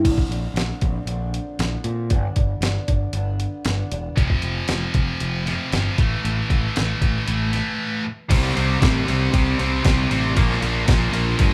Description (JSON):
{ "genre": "quiet-loud alternative rock", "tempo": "116 BPM", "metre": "4/4", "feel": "straight", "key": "unclear", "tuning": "A4 = 438 Hz", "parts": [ { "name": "picked old ladder-braced acoustic guitar", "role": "arpeggios", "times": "0.0-4.2 s", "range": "G2 to D4", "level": "-31 LUFS", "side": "equal", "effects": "none" }, { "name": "growling fingered electric bass", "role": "bass", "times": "0.0-11.5 s", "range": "E1 to Bb2", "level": "-26 LUFS", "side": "equal", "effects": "overdrive" }, { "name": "boom bap sampler-style drum kit", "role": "drums", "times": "0.0-11.5 s", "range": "crash cymbal, hi-hat, kick drum, ride cymbal, snare drum", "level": "-24 LUFS", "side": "equal", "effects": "none" }, { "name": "scooped high-gain guitar", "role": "riff", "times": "4.2-11.5 s", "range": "F2 to C4", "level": "-27 LUFS", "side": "equal", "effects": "distortion" }, { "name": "overdriven electric guitar", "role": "riff", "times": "8.3-11.5 s", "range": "Bb2 to C4", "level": "-26 LUFS", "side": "equal", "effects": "none" } ], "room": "light reverb", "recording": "band playing live in one room", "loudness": "-21 LUFS", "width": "mono", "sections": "0.0-8.3 A section; 8.3-11.5 B section", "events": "break 7.8-8.3", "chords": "0.0 Bbadd9; 2.1 G; 4.2 F5; 6.0 A5; 8.3 C5; 10.4 Bb5", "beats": "| 0.05 0.56 1.08 1.60 | 2.11 2.63 3.14 3.66 | 4.17 4.69 5.21 5.72 | 6.24 6.75 7.27 7.78 | 8.30 8.81 9.33 9.85 | 10.36 10.88 11.39" }